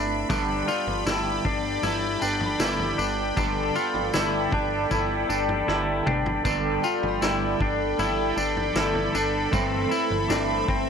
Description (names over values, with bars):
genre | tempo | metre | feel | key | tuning
dream pop | 78 BPM | 4/4 | straight | G major | A4 = 444 Hz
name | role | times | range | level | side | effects
semi-hollow electric guitar | accompaniment | 0.0-10.9 s | G2 to B4 | -30 LUFS | right 4 dB | harmonic tremolo, wide subtle chorus
phased analog pad | sustained chords | 0.0-10.9 s | C4 to B5 | -28 LUFS | equal | phaser, chorus
clean electric guitar | arpeggios | 0.0-10.9 s | C4 to F4 | -27 LUFS | left 4 dB | wide subtle chorus, analog delay
fat analog bass | bass | 0.0-10.9 s | G1 | -33 LUFS | equal | none
vintage drum kit | drums | 0.3-10.9 s | kick drum, snare drum, tambourine, toms | -30 LUFS | equal | none
synth chime | texture | 0.7-9.9 s | D5 to D6 | -38 LUFS | left 2 dB | none
room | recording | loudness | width
studio reverb | dry, gritty hardware recording | -22 LUFS | side -6 dB against mid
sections
0.0-6.5 A section; 6.5-10.9 A section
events
drum fill 5.7-6.5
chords
0.3 Gadd9; 9.5 Amadd9/G